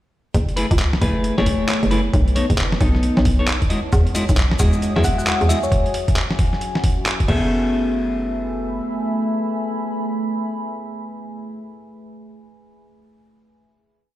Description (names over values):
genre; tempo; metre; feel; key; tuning
UK garage, two-step garage; 134 BPM; 4/4; swing 63% on 16ths; F# dorian; A4 = 440 Hz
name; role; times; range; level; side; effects
hollow knocking FM bass; bass; 0.3-8.8 s; F#1 to E2; -20 LUFS; equal; tube saturation
boom bap sampler-style drum kit; drums; 0.3-7.4 s; crash cymbal, handclaps, hi-hat, snare drum; -25 LUFS; equal; overdrive
electronic kick drum; drums; 0.3-7.4 s; none; -20 LUFS; equal; overdrive
deep dark ambient pad; texture; 0.9-11.9 s; A3 to D#6; -27 LUFS; equal; chorus, built-in reverb, sidechain pumping
clean electric guitar; stabs; 0.6-11.4 s; G#3 to E5; -23 LUFS; left 1 dB; dub echo
maracas; percussion; 3.9-5.7 s; none; -32 LUFS; left 5 dB; none
thumb-piano-like synth pluck; melody; 5.0-5.8 s; C#5 to F#5; -25 LUFS; left 2 dB; chorus, cassette tape, dub echo
room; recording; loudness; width
light reverb, digital ambience; played on a big sound system in a bare room, stone room reverb; -17 LUFS; side -14 dB against mid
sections
0.3-7.5 groove; 7.5-11.1 final chord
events
none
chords
0.3 F#m11; 2.1 B9; 3.7 Emaj9; 5.7 C#m7; 7.3 F#m11